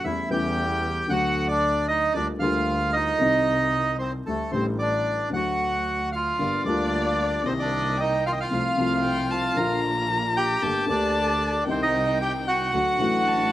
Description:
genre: tango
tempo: 114 BPM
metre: 4/4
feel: rubato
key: G minor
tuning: A4 = 440 Hz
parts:
  - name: bandoneon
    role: melody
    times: 0.0-13.5 s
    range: A3 to G5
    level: -24 LUFS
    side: right 1 dB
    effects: none
  - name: dark grand piano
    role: accompaniment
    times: 0.0-13.5 s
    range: G1 to G4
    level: -28 LUFS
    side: left 2 dB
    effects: none
  - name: clear double bass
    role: bass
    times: 0.0-13.5 s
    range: G1 to E2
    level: -32 LUFS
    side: right 1 dB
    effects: none
  - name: dark violin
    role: second line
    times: 6.4-13.5 s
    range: D5 to Bb5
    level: -30 LUFS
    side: left 4 dB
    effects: slapback echo
  - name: warm symphonic string section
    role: stabs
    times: 6.4-13.5 s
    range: Eb3 to A4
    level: -34 LUFS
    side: right 3 dB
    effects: slapback echo
room: little or no reverb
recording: recorded outdoors, with no room sound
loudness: -21 LUFS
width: side -14 dB against mid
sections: 0.0-13.5 A section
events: none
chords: 0.0 A7/E; 1.1 D; 2.2 Gm7/D; 3.2 Cm; 4.3 Dsus4; 5.3 D; 6.4 Gm7; 7.5 Cm7; 8.5 F/C; 9.6 Bb; 10.6 Gmadd9; 11.7 Cm; 12.7 D

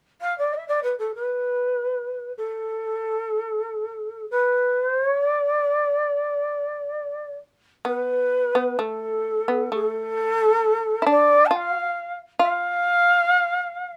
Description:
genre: japanese traditional, Japanese chamber music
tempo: free time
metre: none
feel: none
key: D kumoi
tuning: A4 = 441 Hz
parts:
  - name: breathy long shakuhachi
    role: melody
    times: 0.2-14.0 s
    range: A4 to A5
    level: -23 LUFS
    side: equal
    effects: none
  - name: shamisen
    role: second line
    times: 7.8-14.0 s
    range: A3 to F4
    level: -27 LUFS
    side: equal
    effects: none
room: light reverb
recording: close, detailed microphones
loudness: -23 LUFS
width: mono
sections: 0.0-7.8 A section; 7.8-14.0 B section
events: none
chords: none

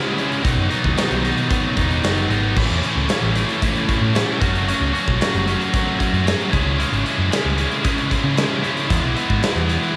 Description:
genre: indie rock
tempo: 114 BPM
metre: 4/4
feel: straight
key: unclear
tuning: A4 = 441 Hz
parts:
  - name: scooped high-gain guitar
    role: riff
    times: 0.0-10.0 s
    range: A2 to F#4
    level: -22 LUFS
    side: equal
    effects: distortion, cassette tape
  - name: big rock drum kit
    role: drums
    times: 0.2-10.0 s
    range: crash cymbal, hi-hat, kick drum, snare drum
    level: -25 LUFS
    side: equal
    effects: cassette tape
  - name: picked electric bass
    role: bass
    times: 0.4-9.8 s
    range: E1 to C#3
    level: -24 LUFS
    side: equal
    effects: none
room: light reverb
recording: home recording on cassette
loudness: -19 LUFS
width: mono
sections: 0.0-10.0 A section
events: none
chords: 0.5 B5; 2.6 A; 4.4 F#m; 6.5 C#m; 8.9 E

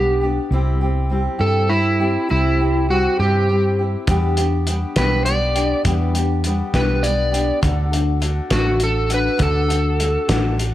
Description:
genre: folk rock and heartland rock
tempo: 67 BPM (dotted quarters)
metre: 6/8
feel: straight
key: unclear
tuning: A4 = 441 Hz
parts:
  - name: overdriven slide guitar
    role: melody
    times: 0.0-10.6 s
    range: E4 to D5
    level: -20 LUFS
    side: right 1 dB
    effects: none
  - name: picked steel-string acoustic guitar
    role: accompaniment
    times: 0.0-10.7 s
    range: C3 to A4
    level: -22 LUFS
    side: left 2 dB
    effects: none
  - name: hollow-body short-scale fingered electric bass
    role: bass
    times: 0.0-10.7 s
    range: A1 to G2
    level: -20 LUFS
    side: equal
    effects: none
  - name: cloth-damped thuddy drum kit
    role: drums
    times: 4.1-10.7 s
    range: hi-hat, kick drum, snare drum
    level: -23 LUFS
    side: equal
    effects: none
room: light reverb, studio reverb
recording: none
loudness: -16 LUFS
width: side -13 dB against mid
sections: 0.0-10.7 A section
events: none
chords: 0.0 Em7 (rootless); 0.5 C; 4.1 Em7; 7.6 D

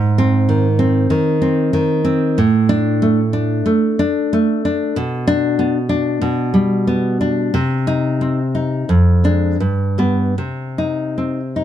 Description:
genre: romantic piece for solo classical guitar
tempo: 75-102 BPM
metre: 4/4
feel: rubato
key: unclear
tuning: A4 = 443 Hz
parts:
  - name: nylon-string guitar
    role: solo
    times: 0.0-11.6 s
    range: F2 to Eb4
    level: -14 LUFS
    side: equal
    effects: none
room: light reverb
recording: dark, warm production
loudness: -14 LUFS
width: side -10 dB against mid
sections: 0.0-11.6 A section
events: none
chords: 0.0 Ab; 2.4 D5/A; 5.0 G/B; 7.5 Cm; 8.9 Ddim/F; 9.6 G; 10.4 Cm

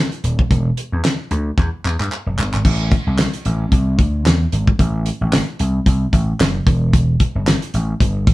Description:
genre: early-eighties boogie funk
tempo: 112 BPM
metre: 4/4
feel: swing 56% on 16ths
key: A dorian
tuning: A4 = 440 Hz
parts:
  - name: damped 70s drum kit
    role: drums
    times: 0.1-8.3 s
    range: crash cymbal, handclaps, hi-hat, kick drum, snare drum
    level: -16 LUFS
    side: equal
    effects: none
  - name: vintage slap bass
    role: bass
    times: 0.2-8.3 s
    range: D#1 to G2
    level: -18 LUFS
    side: equal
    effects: none
room: moderate small room reverb, RT60 0.5 s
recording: band playing live in one room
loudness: -15 LUFS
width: side -18 dB against mid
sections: 0.0-2.6 A section; 2.6-8.3 B section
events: drum fill 1.6-2.6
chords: none

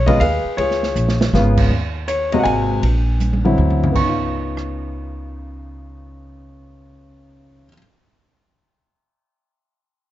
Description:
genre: jazz piano trio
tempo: 160 BPM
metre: 3/4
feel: swing 65% on 8ths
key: Db mixolydian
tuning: A4 = 435 Hz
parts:
  - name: warm grand piano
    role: melody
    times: 0.0-7.8 s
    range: C3 to Db6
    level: -19 LUFS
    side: left 1 dB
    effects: plate reverb
  - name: upright bass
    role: bass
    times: 0.0-7.7 s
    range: Ab1 to Eb2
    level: -20 LUFS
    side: equal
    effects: none
  - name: open jazz drum kit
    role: drums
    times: 0.1-4.6 s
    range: crash cymbal, hi-hat, kick drum, ride cymbal, rim click, snare drum, toms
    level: -24 LUFS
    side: right 2 dB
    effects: none
room: moderate club reverb, RT60 0.5 s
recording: nothing above 7.6 kHz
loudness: -15 LUFS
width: side -14 dB against mid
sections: 0.0-1.7 A section; 1.7-4.0 B section; 4.0-6.2 C section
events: drum fill 1.0-1.3, 3.2-4.0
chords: 0.0 Db7; 1.7 Ebm; 2.5 Ab9; 2.8 Bb7(no3); 3.6 D9; 4.0 Db9

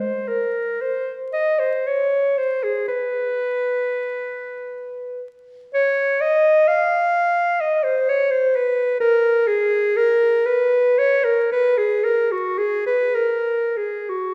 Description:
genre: classical, free, expressive piece for unaccompanied clarinet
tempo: 31-44 BPM (dotted quarters)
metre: 6/8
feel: rubato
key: unclear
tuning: A4 = 441 Hz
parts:
  - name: warm clarinet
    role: solo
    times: 0.0-14.3 s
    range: Gb4 to F5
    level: -20 LUFS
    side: equal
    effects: none
room: wet recital hall reverb, RT60 1.6 s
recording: heard from further back in the room, vinyl crackle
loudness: -20 LUFS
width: mono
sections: 0.0-14.3 A section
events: none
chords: none

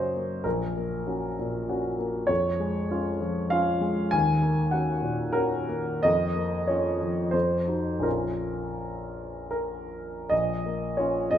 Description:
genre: classical, romantic character piece for solo piano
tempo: 72-100 BPM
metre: 3/4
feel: rubato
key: Bb minor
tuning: A4 = 440 Hz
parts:
  - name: warm grand piano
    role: solo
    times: 0.0-11.4 s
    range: Bb1 to Ab5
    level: -25 LUFS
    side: equal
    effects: none
room: wet recital hall reverb, RT60 1.6 s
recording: none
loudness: -24 LUFS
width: side -10 dB against mid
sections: 0.0-10.3 A section; 10.3-11.4 A section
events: none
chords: 0.4 Gb/Bb; 2.3 Db/F; 4.1 Ebm7; 6.1 Bbm/F; 7.3 F5; 8.0 Bbm

